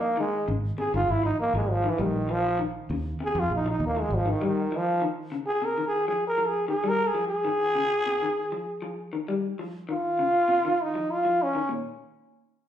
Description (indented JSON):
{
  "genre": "afrobeat",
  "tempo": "99 BPM",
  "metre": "4/4",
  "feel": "straight",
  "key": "unclear",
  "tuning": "A4 = 439 Hz",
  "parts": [
    { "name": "growling trombone", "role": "melody", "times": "0.0-11.7 s", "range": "Eb3 to Bb4", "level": "-25 LUFS", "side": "equal", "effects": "slapback echo" },
    { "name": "electric guitar through a small old amp", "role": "arpeggios", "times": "0.0-11.9 s", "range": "Bb2 to G3", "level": "-32 LUFS", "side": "left 4 dB", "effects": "slapback echo" },
    { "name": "fingered electric bass", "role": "bass", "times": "0.5-4.3 s", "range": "G1 to F2", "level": "-28 LUFS", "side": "equal", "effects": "none" }
  ],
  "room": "light reverb, small room ambience",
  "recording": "live gig heard through the venue's PA, club reverb",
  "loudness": "-24 LUFS",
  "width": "side -10 dB against mid",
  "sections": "0.0-11.7 A section",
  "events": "trombone solo 0.0-11.7",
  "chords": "0.0 Ab5; 2.0 Bbm7; 6.8 Abmaj7(no3); 11.7 N.C."
}